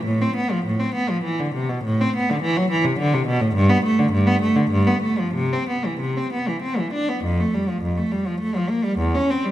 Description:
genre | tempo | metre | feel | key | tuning
classical, baroque-style suite movement for unaccompanied cello | 85-108 BPM | 3/4 | rubato | C major | A4 = 440 Hz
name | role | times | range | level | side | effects
rich cello | solo | 0.0-9.5 s | E2 to D4 | -19 LUFS | equal | none
room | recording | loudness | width
wet recital hall reverb, RT60 1.9 s | none | -19 LUFS | side -13 dB against mid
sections
0.0-7.2 A section; 7.2-9.5 A section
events
none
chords
none

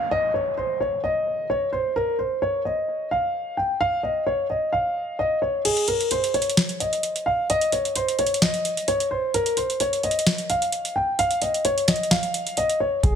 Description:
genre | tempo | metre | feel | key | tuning
hip hop, trap | 130 BPM | 4/4 | half-time | F minor | A4 = 440 Hz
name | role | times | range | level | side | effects
dark concert grand piano | melody | 0.0-13.2 s | Ab4 to G5 | -22 LUFS | equal | tape echo
downlifter | sound effects | 0.0-2.0 s | none | -38 LUFS | equal | none
booming analog drum machine | drums | 5.7-13.2 s | crash cymbal, hi-hat, kick drum, snare drum | -23 LUFS | equal | none
clean 808-style bass | bass | 13.0-13.2 s | F1 | -20 LUFS | equal | none
room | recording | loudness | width
light reverb | dense, heavily limited modern master | -21 LUFS | side -7 dB against mid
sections
0.0-5.7 A section; 5.7-13.2 B section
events
kick muted 5.7-13.0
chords
none

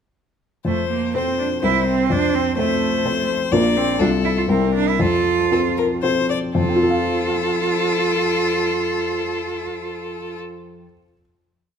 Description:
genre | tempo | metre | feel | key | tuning
quick classical-period movement for piano trio | 113-128 BPM | 3/4 | straight | F major | A4 = 440 Hz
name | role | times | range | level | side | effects
warm baby grand piano | accompaniment | 0.6-11.2 s | Bb1 to F5 | -22 LUFS | left 2 dB | none
clear violin | melody | 0.7-10.4 s | A4 to D5 | -23 LUFS | left 7 dB | none
bright cello | second line | 0.7-10.4 s | A3 to F4 | -22 LUFS | right 7 dB | none
room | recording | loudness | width
moderate recital hall reverb, RT60 1.5 s | close, detailed microphones | -17 LUFS | side -7 dB against mid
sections
0.7-6.6 A section; 6.6-9.6 final chord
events
slowing down 2.8-6.6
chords
0.7 F; 1.6 C7; 2.1 F; 3.5 Bb; 4.0 F/C; 4.5 C7; 5.0 F

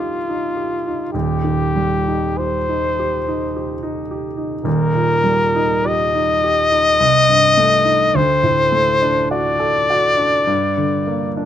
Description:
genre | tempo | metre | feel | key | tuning
classical, romantic duo for trumpet and grand piano | 46-56 BPM | 3/4 | rubato | C minor | A4 = 438 Hz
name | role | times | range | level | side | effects
dark trumpet | melody | 0.0-11.3 s | F4 to Eb5 | -16 LUFS | left 2 dB | none
warm grand piano | accompaniment | 0.0-11.5 s | Eb1 to A4 | -20 LUFS | right 2 dB | none
room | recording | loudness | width
light reverb | close, detailed microphones | -14 LUFS | side -10 dB against mid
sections
0.0-11.5 A section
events
none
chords
0.0 Cm; 1.1 Cm/Eb; 4.7 Eb; 7.0 Am7b5/C; 8.2 D7; 10.5 Gm

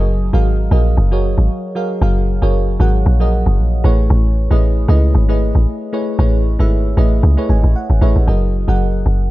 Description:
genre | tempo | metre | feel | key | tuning
amapiano | 115 BPM | 4/4 | swing 55% on 16ths | unclear | A4 = 440 Hz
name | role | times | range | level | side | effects
bell-like FM electric piano | accompaniment | 0.0-9.3 s | F#3 to G#5 | -20 LUFS | equal | chorus
deep log drum bass | bass | 0.0-9.3 s | F#1 to C#2 | -13 LUFS | equal | none
room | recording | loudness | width
digital ambience | dark, warm production | -12 LUFS | side -17 dB against mid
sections
0.0-8.3 A section; 8.3-9.3 B section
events
drop 0.0-8.3; FM electric piano fill 7.2-8.3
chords
0.0 F#69; 3.8 Amaj9; 8.3 F#69

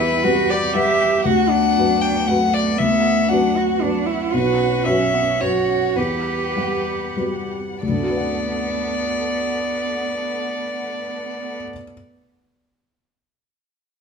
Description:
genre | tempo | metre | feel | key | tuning
neoclassical piano and strings | 92-118 BPM | 3/4 | rubato | D major | A4 = 440 Hz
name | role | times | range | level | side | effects
rich violin | melody | 0.0-11.6 s | B4 to G5 | -22 LUFS | left 2 dB | none
dark cello | second line | 0.0-11.6 s | A3 to G4 | -24 LUFS | right 9 dB | none
felt-muted upright piano | accompaniment | 0.0-11.9 s | B1 to F#5 | -22 LUFS | left 3 dB | none
warm chamber string section | sustained chords | 0.0-11.6 s | G3 to F#5 | -31 LUFS | equal | none
room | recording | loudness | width
moderate large studio reverb, RT60 1.2 s | band playing live in one room | -17 LUFS | side -6 dB against mid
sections
0.0-7.8 A section; 7.8-11.7 B section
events
slowing down 3.6-7.8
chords
0.0 Emadd9; 1.3 D6; 4.3 Bsus2; 6.0 Emadd9; 7.8 D6

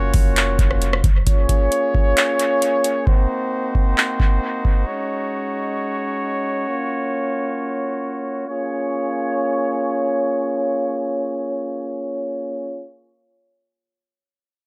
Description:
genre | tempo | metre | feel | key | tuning
hip hop, atmospheric cloud-rap | 133 BPM | 4/4 | half-time | Bb minor | A4 = 441 Hz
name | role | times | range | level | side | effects
clear brass ensemble | sustained chords | 0.0-12.9 s | Ab3 to Db5 | -23 LUFS | equal | sidechain pumping, low-pass filter
clean 808-style bass | bass | 0.0-1.3 s | F1 to Gb1 | -22 LUFS | equal | none
booming analog drum machine | drums | 0.1-4.8 s | handclaps, hi-hat, kick drum, rim click | -20 LUFS | equal | dub echo
room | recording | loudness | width
moderate spring reverb, RT60 1.6 s | echo-heavy mix | -21 LUFS | mono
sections
0.0-1.3 A section; 1.3-8.5 B section; 8.5-12.1 C section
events
filter sweep on brass ensemble 1.3-8.5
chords
0.0 Gbmaj7; 1.3 Bbm7; 3.1 Cm7b5; 4.9 Ab7sus4; 6.7 Gbmaj7; 8.5 Bbm7

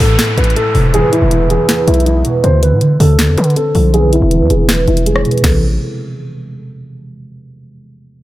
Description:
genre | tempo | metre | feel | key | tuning
hip hop, trap | 160 BPM | 4/4 | half-time | A harmonic minor | A4 = 440 Hz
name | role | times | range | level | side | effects
dark concert grand piano | melody | 0.0-5.6 s | E4 to C5 | -16 LUFS | left 2 dB | low-pass filter, digital delay
concert harp | accompaniment | 0.0-5.6 s | E2 to C4 | -16 LUFS | right 2 dB | low-pass filter
distorted 808-style bass | bass | 0.0-5.8 s | E1 to D3 | -13 LUFS | equal | distortion
trap drum kit | drums | 0.0-5.5 s | crash cymbal, hi-hat, rim click, snare drum, toms | -18 LUFS | equal | none
downlifter | sound effects | 0.0-2.4 s | none | -24 LUFS | equal | none
room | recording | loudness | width
studio reverb | none | -9 LUFS | side -16 dB against mid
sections
0.0-5.4 A section; 5.4-6.9 B section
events
filter sweep 0.0-5.4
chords
0.0 Am; 0.9 E; 2.4 Dm7; 3.9 E; 5.4 Am

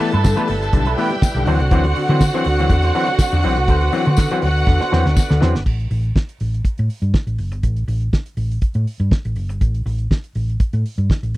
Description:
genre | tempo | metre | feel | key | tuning
disco | 122 BPM | 4/4 | straight | A dorian | A4 = 440 Hz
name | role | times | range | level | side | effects
warm studio violin section | second line | 0.0-5.4 s | F#4 to A5 | -22 LUFS | right 2 dB | none
electric guitar with an envelope filter | accompaniment | 0.0-5.6 s | D4 to C5 | -27 LUFS | right 4 dB | wide subtle chorus
overdriven clav | accompaniment | 0.0-5.6 s | G2 to C4 | -22 LUFS | left 5 dB | none
bright tonewheel organ | sustained chords | 0.0-5.6 s | D3 to B4 | -26 LUFS | equal | overdrive, fast rotary speaker
damped 70s drum kit | drums | 0.0-11.4 s | crash cymbal, hi-hat, kick drum, snare drum | -16 LUFS | equal | none
hollow-body short-scale fingered electric bass | bass | 0.1-11.4 s | F#1 to D3 | -18 LUFS | equal | none
tambourine | percussion | 0.2-5.3 s | none | -32 LUFS | left 11 dB | none
room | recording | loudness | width
little or no reverb | dry, close 1970s-style studio recording | -15 LUFS | side -17 dB against mid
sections
0.0-5.7 A section; 5.7-11.4 B section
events
drum fill 4.7-5.7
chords
0.0 G6; 1.5 D7; 5.7 A5

